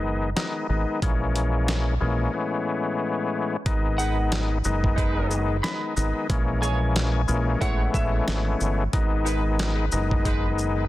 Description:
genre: hip hop, boom-bap hip-hop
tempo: 91 BPM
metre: 4/4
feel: swing 57% on 16ths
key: G# minor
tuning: A4 = 445 Hz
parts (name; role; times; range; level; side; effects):
- overdriven tonewheel organ; accompaniment; 0.0-10.8 s; A2 to D#4; -26 LUFS; left 3 dB; chorus vibrato, cassette tape, high-pass filter, low-pass filter
- deep dub fingered electric bass; bass; 0.0-10.9 s; F#1 to A#1; -25 LUFS; right 1 dB; none
- dusty soul sampler-style drum kit; drums; 0.4-10.8 s; handclaps, hi-hat, kick drum, shaker, snare drum; -27 LUFS; equal; none
- semi-hollow electric guitar; melody; 4.0-8.2 s; E5 to B5; -33 LUFS; right 1 dB; high-pass filter, low-pass filter, ping-pong delay
- warm horn section; stabs; 4.0-10.5 s; G#3 to C#5; -35 LUFS; right 2 dB; high-pass filter, low-pass filter, ping-pong delay
room: light reverb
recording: dense, heavily limited modern master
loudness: -22 LUFS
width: side -16 dB against mid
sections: 0.0-3.7 A section; 3.7-10.9 B section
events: break 2.3-3.7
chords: 0.0 G#m; 1.0 A#m7b5; 2.3 Amaj9; 3.7 G#m; 6.3 A#m7b5; 7.6 Amaj9; 8.9 G#m

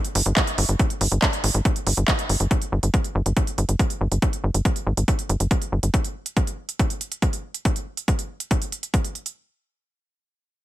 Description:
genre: psychedelic trance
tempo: 140 BPM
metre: 4/4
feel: straight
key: unclear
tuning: A4 = 440 Hz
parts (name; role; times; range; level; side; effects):
- techno drum kit; drums; 0.0-9.3 s; handclaps, hi-hat; -26 LUFS; right 2 dB; none
- tight sequencer bass; bass; 0.2-5.9 s; G1 to Ab1; -21 LUFS; equal; none
- electronic kick drum; drums; 0.4-9.0 s; none; -21 LUFS; equal; none
room: little or no reverb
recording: none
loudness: -20 LUFS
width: side -15 dB against mid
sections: 0.0-9.4 A section; 9.4-10.6 B section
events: filter sweep on analog synth bass 0.0-5.9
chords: none

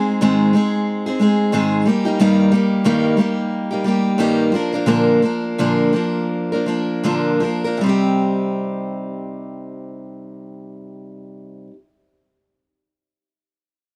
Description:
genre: pop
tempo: 77-91 BPM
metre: 4/4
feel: swing 60% on 16ths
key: C minor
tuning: A4 = 440 Hz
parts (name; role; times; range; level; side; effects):
- picked steel-string acoustic guitar; accompaniment; 0.0-11.8 s; G2 to Bb4; -19 LUFS; equal; none
room: light reverb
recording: dark, warm production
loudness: -18 LUFS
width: mono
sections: 0.0-7.8 A section; 7.8-10.9 B section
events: slowing down 2.2-7.8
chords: 0.0 Ab; 1.9 Eb/G; 4.5 Bb; 7.8 Cm

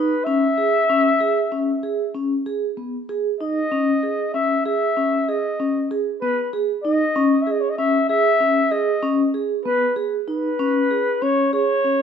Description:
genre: contemporary instrumental, contemporary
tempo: 192 BPM (eighths)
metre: 11/8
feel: straight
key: C# minor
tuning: A4 = 438 Hz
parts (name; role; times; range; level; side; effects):
- warm flugelhorn; melody; 0.0-12.0 s; B4 to E5; -20 LUFS; left 1 dB; none
- vibraphone with soft mallets; arpeggios; 0.0-12.0 s; B3 to G#4; -21 LUFS; right 1 dB; none
room: moderate recital hall reverb, RT60 1.5 s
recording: close, detailed microphones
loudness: -18 LUFS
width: side -7 dB against mid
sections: 0.0-12.0 A section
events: none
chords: 0.0 C#sus2

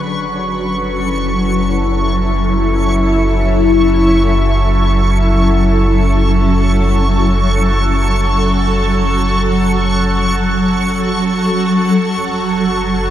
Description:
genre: ambient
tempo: free time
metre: none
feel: none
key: F# minor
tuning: A4 = 440 Hz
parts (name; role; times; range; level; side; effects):
- shimmering ambient pad; sustained chords; 0.0-13.1 s; F#3 to C#5; -14 LUFS; equal; chorus, built-in reverb, phaser
- round analog bass; bass; 0.0-13.1 s; F#1; -16 LUFS; equal; none
- backwards swelling texture; texture; 0.0-13.1 s; C#6; -21 LUFS; equal; built-in reverb
room: moderate shimmer reverb, RT60 8.4 s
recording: none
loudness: -12 LUFS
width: side -11 dB against mid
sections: 0.0-13.1 A section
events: none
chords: 0.0 F#m7; 11.9 Dmaj7/F#

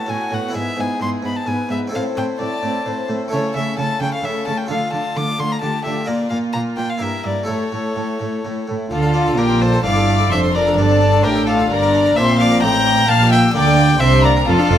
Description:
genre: classical, baroque-style concerto movement with solo episodes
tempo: 130 BPM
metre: 3/4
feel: straight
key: A minor, D minor from 3.3 s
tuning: A4 = 441 Hz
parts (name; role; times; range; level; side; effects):
- rich chamber violin section; melody; 0.0-14.8 s; E4 to G6; -25 LUFS; left 3 dB; none
- warm violin; melody; 0.0-14.8 s; A4 to D6; -21 LUFS; left 2 dB; none
- warm chamber violin section; second line; 0.0-14.8 s; F4 to G5; -24 LUFS; left 4 dB; none
- dark chamber viola section; accompaniment; 0.0-14.8 s; A3 to F4; -24 LUFS; left 3 dB; none
- harpsichord; accompaniment; 0.0-14.8 s; F2 to D5; -26 LUFS; right 2 dB; none
- warm chamber cello section; bass; 0.1-14.8 s; F2 to D3; -21 LUFS; right 2 dB; none
- rich chamber double bass section; bass; 8.9-14.8 s; F1 to D2; -20 LUFS; right 4 dB; none
room: moderate recital hall reverb, RT60 1.5 s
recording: close, detailed microphones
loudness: -15 LUFS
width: side -10 dB against mid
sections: 0.0-8.9 A section; 8.9-14.8 B section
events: none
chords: 0.0 B5/A; 0.6 E/G#; 1.9 Am; 3.3 A/C#; 4.7 Dm; 6.1 Bb5; 7.0 Edim/G; 7.5 A; 8.9 Dm; 10.3 Dm/F; 11.7 Gm; 13.1 Gm/Bb

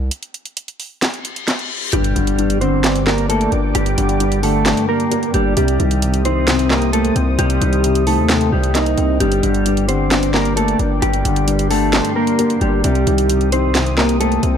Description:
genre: hip hop, trap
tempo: 132 BPM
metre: 4/4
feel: half-time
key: G minor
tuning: A4 = 440 Hz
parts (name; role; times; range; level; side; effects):
- distorted 808-style bass; bass; 0.0-14.6 s; G1 to Eb2; -19 LUFS; equal; distortion
- trap drum kit; drums; 0.1-14.5 s; handclaps, hi-hat, snare drum; -21 LUFS; right 1 dB; none
- reverse cymbal and impact; sound effects; 1.2-3.7 s; none; -27 LUFS; left 3 dB; none
- mellow electric guitar; melody; 1.9-14.4 s; G3 to Eb5; -18 LUFS; right 1 dB; wide subtle chorus, ping-pong delay
- felt-muted upright piano; accompaniment; 1.9-14.6 s; G2 to D4; -21 LUFS; left 6 dB; none
- dark analog pad; sustained chords; 2.4-14.6 s; G4 to Eb6; -26 LUFS; left 1 dB; chorus
room: digital ambience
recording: dark, warm production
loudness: -14 LUFS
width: side -8 dB against mid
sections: 0.0-1.9 A section; 1.9-14.6 B section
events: break 0.0-1.9; reverse cymbal 1.2-1.9; impact 1.9-3.7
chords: 0.0 N.C.; 1.9 Gm; 5.6 Cm7; 9.2 Gm; 12.8 Cm7

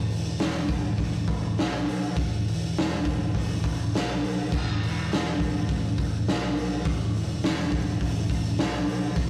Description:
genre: garage rock duo or trio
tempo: 103 BPM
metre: 4/4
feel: straight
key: unclear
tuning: A4 = 440 Hz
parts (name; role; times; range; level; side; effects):
- overdriven picked electric bass; bass; 0.0-9.3 s; E1 to B1; -32 LUFS; equal; none
- raw garage drum kit; drums; 0.1-9.3 s; crash cymbal, hi-hat, kick drum, snare drum; -28 LUFS; equal; none
room: light reverb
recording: rough rehearsal-room recording, warm saturation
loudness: -27 LUFS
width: mono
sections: 0.0-9.3 A section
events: none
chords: none

